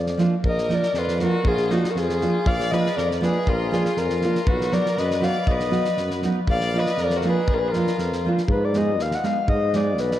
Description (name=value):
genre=balkan folk, Balkan wedding band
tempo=119 BPM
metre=2/4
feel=straight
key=Bb phrygian dominant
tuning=A4 = 437 Hz
part: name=breathy flute-like synth lead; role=melody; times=0.0-10.2 s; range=Gb4 to Gb5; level=-24 LUFS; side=left 2 dB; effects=chorus, slapback echo
part: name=warm tuba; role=bass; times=0.0-10.1 s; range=Bb1 to Ab2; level=-26 LUFS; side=equal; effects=none
part: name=damped 70s drum kit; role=percussion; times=0.1-10.2 s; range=kick drum, snare drum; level=-27 LUFS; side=equal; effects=none
part: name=nylon-string guitar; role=accompaniment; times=0.2-9.9 s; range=F3 to Ab4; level=-25 LUFS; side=right 2 dB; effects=none
part: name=rich violin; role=second line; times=0.5-8.3 s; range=Eb4 to D5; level=-30 LUFS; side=left 2 dB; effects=none
room=wet cathedral reverb, RT60 4.8 s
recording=in a vast, echoing space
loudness=-19 LUFS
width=side -12 dB against mid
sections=0.4-8.5 A section; 8.5-10.2 B section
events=none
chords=0.4 Bb; 4.5 B; 6.5 Bb; 8.5 Abm